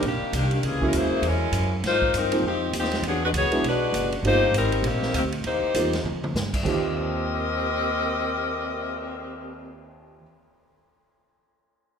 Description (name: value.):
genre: jazz, big band swing.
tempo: 199 BPM.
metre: 4/4.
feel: swing 60% on 8ths.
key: Eb major.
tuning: A4 = 441 Hz.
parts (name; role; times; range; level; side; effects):
clear saxophone section; melody; 0.0-9.8 s; Eb3 to Eb5; -24 LUFS; left 2 dB; none.
warm upright piano; accompaniment; 0.0-10.2 s; Eb2 to G4; -29 LUFS; right 3 dB; none.
upright bass; bass; 0.0-10.2 s; F#1 to Ab2; -29 LUFS; right 1 dB; none.
vintage drum kit; drums; 0.0-9.0 s; crash cymbal, cymbal swell, hi-hat, kick drum, ride cymbal, snare drum, toms; -32 LUFS; right 1 dB; none.
room: moderate concert hall reverb, RT60 2.0 s.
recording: minimal, uncompressed stereo recording.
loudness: -22 LUFS.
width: side -7 dB against mid.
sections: 0.0-6.6 A section; 6.6-9.1 B section.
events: drum fill 6.0-6.3.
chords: 0.0 Cm9; 0.6 Gb9; 1.8 Ab69; 3.0 E9; 4.2 Eb6.